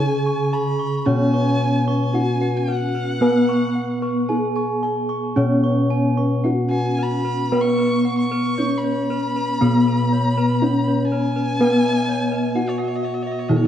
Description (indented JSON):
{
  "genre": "Javanese gamelan",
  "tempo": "56-65 BPM",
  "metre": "4/4",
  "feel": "straight",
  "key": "unclear",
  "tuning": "A4 = 442 Hz",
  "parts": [
    { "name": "gamelan-type bronze metallophone", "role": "melody", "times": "0.0-13.7 s", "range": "B3-40c to C#5", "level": "-23 LUFS", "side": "left 1 dB", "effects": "none" },
    { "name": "clear erhu", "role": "second line", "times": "0.0-13.7 s", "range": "C#5 to C#6", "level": "-27 LUFS", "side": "equal", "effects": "none" },
    { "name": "gamelan-type bronze metallophone", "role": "accompaniment", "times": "0.0-13.7 s", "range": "C#3 to C#4", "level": "-24 LUFS", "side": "right 1 dB", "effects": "none" },
    { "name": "gamelan-type bossed gongs", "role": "arpeggios", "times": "0.0-13.7 s", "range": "B4-40c to C#6", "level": "-31 LUFS", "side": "left 6 dB", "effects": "tape echo" },
    { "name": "gamelan-type bronze metallophone", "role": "arpeggios", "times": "0.0-13.7 s", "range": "B4-40c to C#6", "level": "-31 LUFS", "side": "right 5 dB", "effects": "none" },
    { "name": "gamelan-type bossed gongs", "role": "bass", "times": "0.0-13.7 s", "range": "B2-40c to B4-40c", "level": "-22 LUFS", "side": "equal", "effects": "none" }
  ],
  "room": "moderate concert hall reverb, RT60 2.1 s",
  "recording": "dark, warm production",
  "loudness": "-17 LUFS",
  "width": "side -10 dB against mid",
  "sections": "0.0-13.7 A section",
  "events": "none",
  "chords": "none"
}